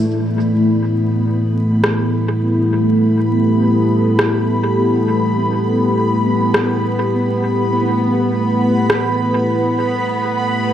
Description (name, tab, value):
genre	ambient dub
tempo	free time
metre	none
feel	none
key	unclear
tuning	A4 = 441 Hz
part	deep dark ambient pad	sustained chords	0.0-10.7 s	A3 to D5	-15 LUFS	equal	chorus, built-in reverb
part	bubbling stepped-filter texture	texture	0.4-10.7 s	B3 to B5	-20 LUFS	equal	chorus, built-in reverb
part	electronic rim click	drums	1.8-9.0 s	none	-20 LUFS	equal	dub echo
room	light reverb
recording	dark, warm production, vinyl crackle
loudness	-14 LUFS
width	side -10 dB against mid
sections	0.1-10.7 A section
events	none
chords	0.0 G6/A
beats	free time